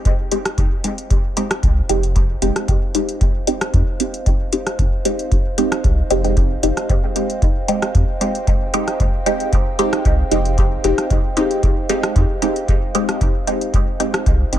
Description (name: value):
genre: dub techno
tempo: 114 BPM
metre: 4/4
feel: straight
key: F minor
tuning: A4 = 440 Hz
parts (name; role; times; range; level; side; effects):
- dark analog pad; sustained chords; 0.0-14.6 s; C5 to G5; -28 LUFS; right 2 dB; chorus, sidechain pumping
- booming analog drum machine; drums; 0.1-14.6 s; hi-hat, rim click; -24 LUFS; equal; none
- electronic kick drum; drums; 0.1-14.4 s; none; -18 LUFS; equal; none
- filtered dub chord stab; stabs; 0.3-14.6 s; Ab3 to G4; -21 LUFS; equal; phaser, sidechain pumping, dub echo
- warm sub bass; bass; 0.6-14.6 s; F1 to F2; -19 LUFS; equal; sidechain pumping
room: digital ambience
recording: none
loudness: -15 LUFS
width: side -12 dB against mid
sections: 0.0-14.6 A section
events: filter sweep on synth stab 0.0-14.6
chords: 0.0 Fm7